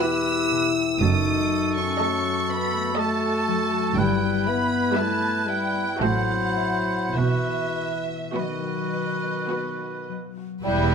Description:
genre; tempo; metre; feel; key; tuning
classical, slow romantic movement for symphony orchestra; 50-61 BPM; 3/4; rubato; unclear; A4 = 439 Hz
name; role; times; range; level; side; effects
rich symphonic violin section; melody; 0.0-10.9 s; D#5 to E6; -29 LUFS; right 1 dB; none
rich chamber violin section; second line; 0.0-10.9 s; G3 to E5; -32 LUFS; left 1 dB; none
warm clarinet; second line; 0.0-10.9 s; E4 to G4; -31 LUFS; equal; none
warm oboe; second line; 0.0-10.9 s; A4 to C5; -29 LUFS; right 2 dB; none
rich symphonic viola section; accompaniment; 0.0-10.9 s; G3 to A4; -31 LUFS; right 3 dB; none
dark French horn section; sustained chords; 0.0-10.9 s; D#3 to E4; -28 LUFS; left 4 dB; none
concert harp; arpeggios; 0.0-10.9 s; E2 to E5; -31 LUFS; left 7 dB; none
rich chamber cello section; bass; 1.0-10.9 s; E2 to B2; -28 LUFS; right 4 dB; none
warm symphonic double bass section; bass; 1.0-10.9 s; E1 to B1; -28 LUFS; right 5 dB; none
flute section; second line; 10.6-10.9 s; G6; -30 LUFS; left 3 dB; none
warm bassoon; accompaniment; 10.7-10.9 s; G3; -26 LUFS; right 8 dB; none
room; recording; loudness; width
moderate scoring stage reverb, RT60 1.6 s; close, detailed microphones; -21 LUFS; side -6 dB against mid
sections
0.0-10.6 A section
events
none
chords
0.0 Em; 1.0 D#dim/F#; 4.0 Em/G; 6.0 F#m7b5/A; 7.2 B

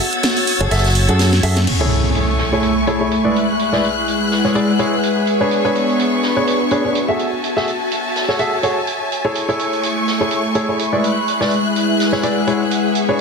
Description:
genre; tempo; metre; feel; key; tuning
piano house; 125 BPM; 4/4; swing 55% on 16ths; unclear; A4 = 439 Hz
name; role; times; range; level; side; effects
muted symphonic violin section; sustained chords; 0.0-13.2 s; A3 to A6; -22 LUFS; left 1 dB; none
vintage drum kit; drums; 0.0-13.2 s; hi-hat, snare drum; -27 LUFS; right 4 dB; high-pass filter on hats, low-pass filter on hats, high-pass filter on snare, low-pass filter on snare, high-pass filter on room, low-pass filter on room
warbly tape-like pad; texture; 0.0-13.2 s; G#3 to C#6; -20 LUFS; left 1 dB; chorus, built-in reverb
house drum kit; drums; 0.1-1.8 s; crash cymbal, hi-hat, snare drum; -22 LUFS; right 1 dB; none
warm baby grand piano; riff; 0.6-13.2 s; G#3 to F#5; -20 LUFS; equal; digital delay
modern bright fingered electric bass; bass; 0.6-1.7 s; F#1 to F#2; -15 LUFS; equal; none
impact; sound effects; 1.7-3.6 s; none; -22 LUFS; equal; none
room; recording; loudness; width
moderate lush hall reverb, RT60 2.5 s; dense, heavily limited modern master; -14 LUFS; side -5 dB against mid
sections
0.0-1.7 A section; 1.7-13.2 B section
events
drum fill 1.2-1.7; band accent 1.6; impact 1.7-3.6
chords
0.0 F#m9; 1.7 Amaj7; 3.4 E7/G#; 5.3 Bm69; 7.2 F#m9; 9.4 Amaj7; 11.0 E7/G#

